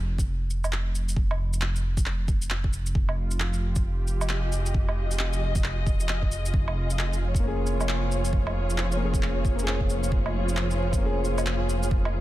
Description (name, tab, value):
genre	future garage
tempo	134 BPM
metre	4/4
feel	swing 61% on 16ths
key	F minor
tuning	A4 = 440 Hz
part	dark detuned saw bass	bass	0.0-12.2 s	F1	-27 LUFS	equal	tube saturation, sidechain pumping
part	electronic kick drum	drums	0.2-12.0 s	none	-26 LUFS	equal	none
part	electronic shaker, woodblock and handclaps	drums	0.2-12.1 s	none	-33 LUFS	right 1 dB	none
part	muted studio string section	sustained chords	3.0-12.2 s	F3 to Eb5	-32 LUFS	equal	vintage 12-bit sampler grit, sidechain pumping
part	warm upright piano	accompaniment	7.4-12.2 s	Bb3 to Ab4	-32 LUFS	left 4 dB	sidechain pumping, ping-pong delay
room	digital ambience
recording	none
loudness	-24 LUFS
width	side -15 dB against mid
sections	0.0-12.2 A section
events	none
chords	0.0 Fm7; 6.5 Bbm7/F